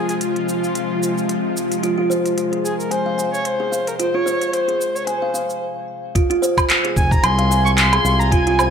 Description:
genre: organic downtempo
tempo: 111 BPM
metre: 4/4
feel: swing 56% on 16ths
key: F minor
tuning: A4 = 440 Hz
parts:
  - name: dark kamancheh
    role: melody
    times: 0.0-8.7 s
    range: F4 to Db6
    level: -22 LUFS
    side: left 1 dB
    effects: digital delay
  - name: bowed-like drone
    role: sustained chords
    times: 0.0-8.7 s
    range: C3 to F4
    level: -24 LUFS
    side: left 2 dB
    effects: built-in reverb, sidechain pumping
  - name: organic electronic drum kit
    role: drums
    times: 0.1-8.7 s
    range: handclaps, hi-hat, shaker, woodblock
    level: -21 LUFS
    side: right 1 dB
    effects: overdrive
  - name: kalimba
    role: arpeggios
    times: 1.8-8.7 s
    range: F4 to Ab5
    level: -21 LUFS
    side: right 2 dB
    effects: digital delay
  - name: electronic kick drum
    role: drums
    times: 6.2-8.4 s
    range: none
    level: -18 LUFS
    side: equal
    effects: none
  - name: drifting glass-harmonics texture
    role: texture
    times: 6.7-8.7 s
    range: Ab5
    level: -28 LUFS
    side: right 2 dB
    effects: chorus, built-in reverb
  - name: smooth gliding synth bass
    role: bass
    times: 7.0-8.7 s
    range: F1 to C2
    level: -18 LUFS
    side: equal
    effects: tube saturation, sidechain pumping
room: moderate lush hall reverb, RT60 1.9 s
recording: none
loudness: -16 LUFS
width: side -7 dB against mid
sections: 0.0-6.2 A section; 6.2-8.7 B section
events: stop 5.6-6.2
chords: 0.0 Fm

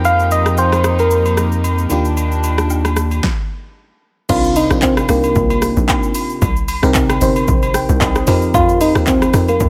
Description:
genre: amapiano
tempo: 113 BPM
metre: 4/4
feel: swing 55% on 16ths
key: C minor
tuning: A4 = 440 Hz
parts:
  - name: FM electric piano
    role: accompaniment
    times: 0.0-9.7 s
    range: C3 to Bb5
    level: -22 LUFS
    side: equal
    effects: chorus, low-pass filter
  - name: warm studio string section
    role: sustained chords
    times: 0.0-3.2 s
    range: Eb3 to G4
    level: -26 LUFS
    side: equal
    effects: low-pass filter
  - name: saturated sub bass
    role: bass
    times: 0.0-3.2 s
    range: Eb2 to F2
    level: -19 LUFS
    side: equal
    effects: none
  - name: deep house drum kit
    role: drums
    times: 0.0-9.7 s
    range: crash cymbal, handclaps, hi-hat, kick drum, rim click, shaker, snare drum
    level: -21 LUFS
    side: equal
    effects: overdrive
  - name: agogo bells and woodblock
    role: percussion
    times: 0.0-9.6 s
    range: none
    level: -27 LUFS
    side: equal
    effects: none
  - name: soft struck synth lead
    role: melody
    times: 0.1-9.7 s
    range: Bb3 to F5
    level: -18 LUFS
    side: equal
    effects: chorus, low-pass filter, digital delay
  - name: tight log drum bass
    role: bass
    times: 4.3-9.7 s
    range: G1 to F2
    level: -20 LUFS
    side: equal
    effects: none
room: little or no reverb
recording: none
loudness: -15 LUFS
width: mono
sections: 0.0-4.3 A section; 4.3-9.7 B section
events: filter sweep 0.0-4.3; stop 3.2-4.3; drop 4.3-9.7; FM electric piano fill 7.5-8.5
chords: 0.0 F9sus4; 1.9 Ebmaj7; 4.3 Cm7; 6.4 Eb6; 8.3 F9sus4

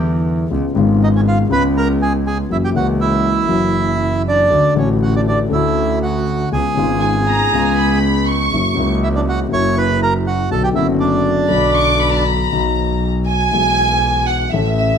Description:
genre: tango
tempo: 120 BPM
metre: 4/4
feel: rubato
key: B minor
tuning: A4 = 439 Hz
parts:
  - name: dark concert grand piano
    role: accompaniment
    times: 0.0-15.0 s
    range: F#1 to A4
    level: -18 LUFS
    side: left 4 dB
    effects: none
  - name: clear double bass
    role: bass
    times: 0.0-15.0 s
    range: F#1 to E2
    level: -20 LUFS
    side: right 2 dB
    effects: none
  - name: bandoneon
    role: melody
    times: 1.0-12.2 s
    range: C#4 to C#6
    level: -18 LUFS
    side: right 3 dB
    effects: none
  - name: warm chamber violin section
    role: second line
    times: 7.0-15.0 s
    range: E5 to D6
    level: -18 LUFS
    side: right 1 dB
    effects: none
room: moderate large studio reverb, RT60 0.9 s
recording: none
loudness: -13 LUFS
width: side -7 dB against mid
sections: 0.0-12.5 A section; 12.5-15.0 B section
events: violin section solo 12.5-15.0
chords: 0.0 Em7; 0.5 C#7; 2.5 F#7; 4.5 Dmaj7; 6.5 C#7; 8.5 F#7; 10.5 Bm; 12.5 B; 13.5 E/B

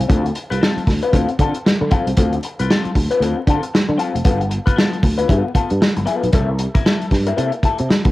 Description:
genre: funk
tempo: 115 BPM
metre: 4/4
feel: swing 60% on 16ths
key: D dorian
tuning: A4 = 442 Hz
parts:
  - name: electric guitar through a small old amp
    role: accompaniment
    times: 0.0-8.1 s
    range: Bb3 to B4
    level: -22 LUFS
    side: left 4 dB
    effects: wah, cassette tape
  - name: sustaining fretless electric bass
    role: bass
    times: 0.0-8.1 s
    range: F1 to D3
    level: -20 LUFS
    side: equal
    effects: ensemble chorus
  - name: warm soul drum kit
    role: drums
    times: 0.0-8.1 s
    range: hi-hat, kick drum, snare drum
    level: -17 LUFS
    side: equal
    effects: cassette tape
room: light reverb, small room ambience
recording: home recording on cassette, vinyl crackle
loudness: -15 LUFS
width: side -17 dB against mid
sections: 0.0-4.3 A section; 4.3-8.1 B section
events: none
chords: 0.0 Dm7; 4.3 G9; 6.3 C13

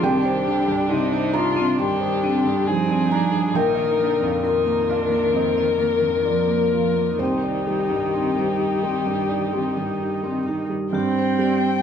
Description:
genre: neoclassical piano and strings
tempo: 63-68 BPM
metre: 4/4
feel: rubato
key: C minor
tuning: A4 = 440 Hz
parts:
  - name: dark violin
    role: melody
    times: 0.0-11.8 s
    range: Eb4 to G5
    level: -22 LUFS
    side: left 6 dB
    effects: none
  - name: warm cello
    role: second line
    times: 0.0-11.8 s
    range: C3 to C4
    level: -27 LUFS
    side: right 6 dB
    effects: none
  - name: felt-muted upright piano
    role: accompaniment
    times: 0.0-11.8 s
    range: Bb1 to C6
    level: -24 LUFS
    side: right 3 dB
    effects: none
  - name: rich viola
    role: accompaniment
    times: 0.0-11.8 s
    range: Bb3 to C5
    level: -31 LUFS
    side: right 4 dB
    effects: none
  - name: vibraphone with hard mallets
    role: arpeggios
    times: 0.0-11.8 s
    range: C4 to Bb5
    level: -29 LUFS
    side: left 3 dB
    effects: none
room: light reverb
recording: band playing live in one room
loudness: -19 LUFS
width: side -8 dB against mid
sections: 0.0-10.9 A section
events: none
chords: 0.0 Cmadd9; 3.6 Bbsus4; 7.2 Cmadd9; 10.9 Gsus4

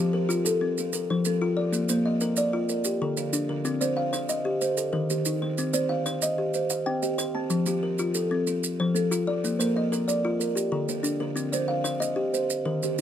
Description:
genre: southern african traditional, mbira-style interlocking cycle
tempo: 124 BPM (dotted quarters)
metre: 12/8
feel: straight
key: C dorian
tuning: A4 = 438 Hz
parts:
  - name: buzzing kalimba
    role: arpeggios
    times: 0.0-13.0 s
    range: D3 to F5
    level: -28 LUFS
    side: right 3 dB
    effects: none
  - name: kalimba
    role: arpeggios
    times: 0.0-13.0 s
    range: D3 to A5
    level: -27 LUFS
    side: left 3 dB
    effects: none
  - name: maracas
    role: percussion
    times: 0.3-13.0 s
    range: none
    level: -32 LUFS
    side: right 7 dB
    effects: none
room: little or no reverb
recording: close, detailed microphones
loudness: -24 LUFS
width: side -10 dB against mid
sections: 0.0-13.0 A section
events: none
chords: 0.0 F; 1.7 Bb; 2.7 Dm; 3.7 Cm; 4.6 Eb; 5.6 Cm; 7.5 F; 9.4 Bb; 10.4 Dm; 11.4 Cm; 12.3 Eb

